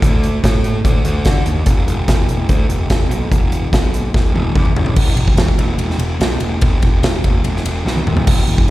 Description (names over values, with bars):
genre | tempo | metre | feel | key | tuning
classic rock | 145 BPM | 4/4 | straight | unclear | A4 = 439 Hz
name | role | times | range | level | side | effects
fuzz picked electric bass | bass | 0.0-8.7 s | E1 to D3 | -17 LUFS | equal | overdrive
big rock drum kit | drums | 0.0-8.7 s | crash cymbal, hi-hat, kick drum, ride cymbal, snare drum, toms | -15 LUFS | equal | none
room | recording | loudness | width
little or no reverb | live gig heard through the venue's PA, recital hall reverb | -13 LUFS | side -16 dB against mid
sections
0.0-5.0 A section; 5.0-8.3 B section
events
drum fill 4.1-5.0, 7.9-8.3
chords
none